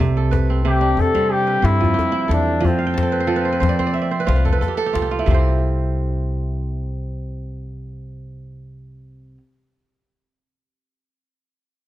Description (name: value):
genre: west african traditional, West African string and xylophone music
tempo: 91 BPM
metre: 4/4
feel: swing 54% on 16ths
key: unclear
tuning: A4 = 439 Hz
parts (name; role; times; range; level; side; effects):
- kora; arpeggios; 0.0-9.4 s; C3 to A5; -22 LUFS; right 4 dB; none
- upright bass; bass; 0.0-9.4 s; C2 to F3; -22 LUFS; equal; none
- djembe; percussion; 0.3-5.6 s; none; -24 LUFS; left 3 dB; none
- warm flugelhorn; melody; 0.7-4.6 s; C4 to A4; -20 LUFS; left 2 dB; none
room: moderate recital hall reverb, RT60 1.5 s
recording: close, detailed microphones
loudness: -17 LUFS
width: side -14 dB against mid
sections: 0.0-5.3 A section; 5.3-7.9 B section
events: kora fill 2.8-5.3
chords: 0.0 C; 5.3 N.C.